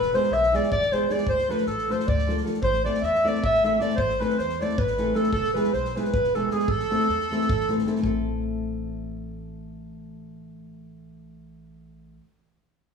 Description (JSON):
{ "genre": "balkan folk, Balkan wedding band", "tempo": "311 BPM (eighths)", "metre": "7/8", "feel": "straight", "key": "A harmonic minor", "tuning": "A4 = 438 Hz", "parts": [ { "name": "mellow clarinet", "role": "melody", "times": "0.0-7.7 s", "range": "G#4 to E5", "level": "-24 LUFS", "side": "equal", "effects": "none" }, { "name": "accordion", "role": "second line", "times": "0.0-7.7 s", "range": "G#4 to E5", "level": "-30 LUFS", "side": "right 2 dB", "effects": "none" }, { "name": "upright bass", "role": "bass", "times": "0.0-12.2 s", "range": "E1 to E2", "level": "-33 LUFS", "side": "left 1 dB", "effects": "none" }, { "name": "natural country drum kit", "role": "percussion", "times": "0.0-8.2 s", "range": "kick drum, snare drum", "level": "-32 LUFS", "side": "equal", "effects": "none" }, { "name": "nylon-string guitar", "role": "accompaniment", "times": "0.1-12.2 s", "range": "E3 to A4", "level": "-28 LUFS", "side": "left 1 dB", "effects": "none" } ], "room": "wet large studio reverb, RT60 1.1 s", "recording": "band playing live in one room, studio ambience", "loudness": "-21 LUFS", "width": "side -6 dB against mid", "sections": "0.0-8.0 A section; 8.0-10.7 B section", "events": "none", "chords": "0.0 E; 1.3 Dm; 2.6 Am; 5.3 E; 6.7 Am", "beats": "0.10 0.29 0.48 0.68 0.87 1.07 | 1.26 1.46 1.65 1.85 2.04 2.23 2.43 | 2.62 2.82 3.01 3.20 3.40 3.59 3.79 | 3.98 4.17 4.37 4.56 4.75 4.95 5.14 | 5.33 5.53 5.72 5.91 6.11 6.30 6.49 | 6.68 6.88 7.07 7.26 7.45 7.65 7.84 | 8.03 8.22 8.41 8.61 8.80 8.99 9.18 | 9.38 9.57 9.76 9.95 10.14 10.34 10.53" }